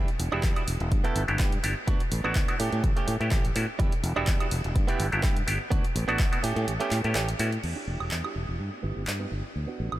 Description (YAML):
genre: filtered disco house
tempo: 125 BPM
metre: 4/4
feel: swing 53% on 16ths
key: E dorian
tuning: A4 = 443 Hz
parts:
  - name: direct-recorded clean electric guitar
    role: riff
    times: 0.0-9.9 s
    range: A3 to A4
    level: -34 LUFS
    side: right 5 dB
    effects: vintage 12-bit sampler grit, sidechain pumping, low-pass filter
  - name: fingered electric bass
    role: bass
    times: 0.0-10.0 s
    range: E1 to A2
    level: -30 LUFS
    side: equal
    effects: sidechain pumping, low-pass filter
  - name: punchy analog drum machine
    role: drums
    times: 0.1-10.0 s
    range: crash cymbal, handclaps, hi-hat, woodblock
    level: -34 LUFS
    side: right 2 dB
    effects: overdrive, sidechain pumping on hats, sidechain pumping on perc, sidechain pumping on cymbals
  - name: auto-wah clav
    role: accompaniment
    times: 0.3-10.0 s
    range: G3 to G4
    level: -33 LUFS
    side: left 1 dB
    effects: phaser, sidechain pumping, low-pass filter
  - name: electronic kick drum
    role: drums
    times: 0.4-6.3 s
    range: none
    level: -26 LUFS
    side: equal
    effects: overdrive
room: light reverb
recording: none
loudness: -24 LUFS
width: side -15 dB against mid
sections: 0.0-7.6 A section; 7.6-10.0 B section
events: kick drops out 6.7-7.6; filter sweep 7.6-10.0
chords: 0.0 Em7; 0.9 G6; 1.9 D6; 2.6 A7; 3.8 Em7; 4.8 G6; 5.7 D6; 6.4 A7; 7.6 Em7; 8.6 G6